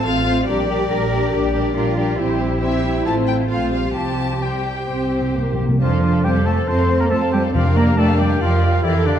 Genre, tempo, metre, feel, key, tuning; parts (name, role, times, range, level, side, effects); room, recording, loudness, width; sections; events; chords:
quick classical-period movement for symphony orchestra; 138 BPM; 4/4; rubato; F major; A4 = 439 Hz
rich chamber violin section; melody; 0.0-9.2 s; D5 to A5; -28 LUFS; left 6 dB
rich chamber violin section; second line; 0.0-9.2 s; F4 to F5; -26 LUFS; left 5 dB
dark studio viola section; accompaniment; 0.0-9.2 s; F3 to A4; -23 LUFS; right 1 dB
rich symphonic cello section; bass; 0.0-9.2 s; D3 to Bb4; -23 LUFS; right 2 dB
rich chamber double bass section; bass; 0.1-9.2 s; A1 to F2; -22 LUFS; right 2 dB
timpani; percussion; 4.9-8.2 s; F2 to C3; -22 LUFS; equal
bright concert flute; second line; 5.8-9.2 s; D5 to C6; -27 LUFS; left 2 dB
warm oboe; second line; 5.8-9.2 s; D4 to C5; -27 LUFS; right 1 dB
mellow French horn section; sustained chords; 5.8-9.2 s; G4 to C5; -25 LUFS; left 3 dB
wet scoring stage reverb, RT60 1.6 s; dark, warm production; -16 LUFS; side -9 dB against mid
0.0-5.8 A section; 5.8-9.2 B section
timpani fill 4.9-5.8
0.5 Gm/Bb; 2.2 C7/Bb; 3.1 F/A; 3.9 Csus4; 4.9 C5; 5.8 F; 7.5 Gm7/F